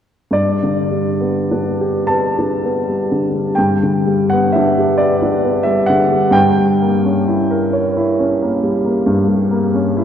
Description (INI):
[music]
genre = classical, romantic nocturne for solo piano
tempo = 32-47 BPM (dotted quarters)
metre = 12/8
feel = rubato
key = G major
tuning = A4 = 444 Hz
[part]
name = warm upright piano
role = solo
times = 0.3-10.0 s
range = G2 to A5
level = -13 LUFS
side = equal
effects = none
[sound]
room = wet church reverb, RT60 2.9 s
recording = dark, warm production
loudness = -13 LUFS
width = side -9 dB against mid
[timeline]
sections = 0.4-10.0 A section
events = none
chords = 0.4 G; 6.3 Gdim7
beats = | 0.36 2.10 3.58 4.99 | 6.33 7.74 9.06